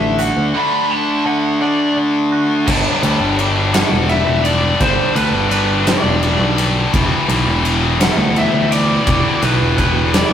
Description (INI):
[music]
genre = quiet-loud alternative rock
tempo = 56 BPM (dotted quarters)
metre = 6/8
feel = straight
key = G major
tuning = A4 = 439 Hz
[part]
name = lead guitar through a small cranked amp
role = melody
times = 0.0-10.3 s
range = B4 to B5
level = -19 LUFS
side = equal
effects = overdrive
[part]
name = twangy electric guitar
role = arpeggios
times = 0.0-2.7 s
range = D3 to F#4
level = -25 LUFS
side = right 5 dB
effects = none
[part]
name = biting overdriven guitar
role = riff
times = 0.0-2.7 s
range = D3 to D4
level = -18 LUFS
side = right 2 dB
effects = none
[part]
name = heavy high-gain guitar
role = riff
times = 0.0-10.3 s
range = D3 to G4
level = -20 LUFS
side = left 5 dB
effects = distortion
[part]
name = picked electric bass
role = bass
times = 0.0-10.3 s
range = E1 to D2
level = -18 LUFS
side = equal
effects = none
[part]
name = huge arena drum kit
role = drums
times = 0.2-10.3 s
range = crash cymbal, hi-hat, kick drum, ride cymbal, snare drum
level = -19 LUFS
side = equal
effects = none
[part]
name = scooped high-gain guitar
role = riff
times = 2.7-10.3 s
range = E2 to G3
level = -20 LUFS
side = equal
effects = distortion
[sound]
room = light reverb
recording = rough rehearsal-room recording, tube saturation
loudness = -13 LUFS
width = side -9 dB against mid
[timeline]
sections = 0.0-2.7 A section; 2.7-10.3 B section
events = lead electric guitar solo 0.0-2.7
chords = 0.0 D; 2.7 G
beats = | 0.55 1.62 | 2.68 3.75 | 4.81 5.88 | 6.94 8.01 | 9.07 10.13